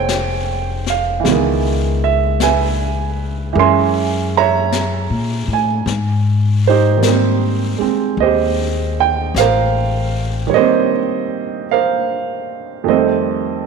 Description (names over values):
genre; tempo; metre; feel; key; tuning
jazz ballad; 52 BPM; 4/4; swing 68% on 8ths; Ab major; A4 = 440 Hz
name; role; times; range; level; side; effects
warm upright piano; accompaniment; 0.0-13.7 s; F2 to C6; -16 LUFS; right 8 dB; none
upright bass; bass; 0.0-10.5 s; F1 to Bb2; -18 LUFS; left 3 dB; none
jazz brush drum kit; drums; 0.1-11.1 s; brushed snare drum, hi-hat, snare drum; -26 LUFS; left 10 dB; none
room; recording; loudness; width
moderate echo chamber reverb, RT60 2.3 s; 1960s-style stereo with parts hard left and right; -14 LUFS; side -5 dB against mid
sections
0.0-13.7 A section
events
none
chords
0.0 Bbm11; 1.2 Dbm7; 3.6 Gb9; 5.9 Abmaj9; 12.9 F7